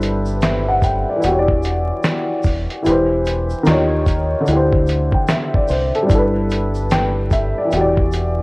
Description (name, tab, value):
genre	lo-fi hip hop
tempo	74 BPM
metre	4/4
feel	swing 62% on 16ths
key	unclear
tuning	A4 = 439 Hz
part	dark upright piano	accompaniment	0.0-8.4 s	D3 to G5	-17 LUFS	equal	low-pass filter
part	deep dub fingered electric bass	bass	0.0-8.4 s	E1 to D#2	-21 LUFS	equal	none
part	dusty soul sampler-style drum kit	drums	0.0-8.4 s	finger snaps, hi-hat, kick drum, snare drum	-19 LUFS	equal	none
part	tube shaker	percussion	0.0-8.4 s	none	-45 LUFS	right 4 dB	none
room	light reverb, digital ambience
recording	worn, warbling old tape, cassette tape, vinyl crackle, warbly pitch drift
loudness	-14 LUFS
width	side -26 dB against mid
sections	0.0-8.4 A section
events	none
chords	0.0 G6; 1.2 Em9; 2.9 Cmaj7/E; 3.7 D#9; 4.5 D9sus4; 6.1 G6; 7.7 Em9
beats	0.42 1.23 2.04 | 2.85 3.66 4.47 5.28 | 6.09 6.91 7.72